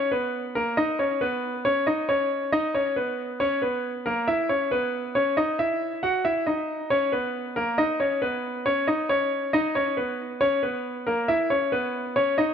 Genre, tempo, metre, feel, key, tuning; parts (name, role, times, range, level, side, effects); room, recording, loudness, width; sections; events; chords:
hip hop; 137 BPM; 4/4; half-time; A4 = 440 Hz
bright concert grand piano; solo; 0.0-12.5 s; A#3 to F#5; -23 LUFS; equal; low-pass filter, tape echo
light reverb, studio ambience; -23 LUFS; side -7 dB against mid
0.0-12.5 A section
0.0 F# (rootless); 0.8 Badd9; 4.3 E5; 6.0 F#; 7.8 Badd9; 11.3 E5